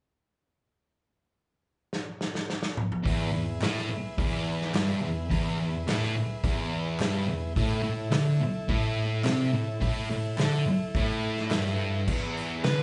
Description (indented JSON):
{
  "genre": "garage rock duo or trio",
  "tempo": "106 BPM",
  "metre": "4/4",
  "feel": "straight",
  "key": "E major",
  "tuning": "A4 = 440 Hz",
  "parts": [
    { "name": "vintage drum kit", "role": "drums", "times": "1.9-12.8 s", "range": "crash cymbal, hi-hat, kick drum, snare drum, toms", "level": "-34 LUFS", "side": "equal", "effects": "none" },
    { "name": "thick fuzz guitar", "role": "riff", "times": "3.0-12.8 s", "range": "E2 to D3", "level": "-30 LUFS", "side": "equal", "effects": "distortion" },
    { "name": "combo organ", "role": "sustained chords", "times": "3.1-12.8 s", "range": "E4 to E5", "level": "-40 LUFS", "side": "equal", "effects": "none" },
    { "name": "group handclap", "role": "percussion", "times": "3.6-12.8 s", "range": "none", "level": "-44 LUFS", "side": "equal", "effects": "none" },
    { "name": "fuzz lead guitar", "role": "melody", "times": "12.6-12.8 s", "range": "B4", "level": "-31 LUFS", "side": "equal", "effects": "distortion" }
  ],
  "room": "wet large studio reverb, RT60 0.8 s",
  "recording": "band playing live in one room, nothing above 10.6 kHz",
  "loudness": "-28 LUFS",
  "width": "mono",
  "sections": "0.8-3.1 A section; 3.1-12.1 B section",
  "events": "drum fill 1.9-3.1",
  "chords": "0.8 N.C.; 3.1 E; 7.6 A5; 12.1 E"
}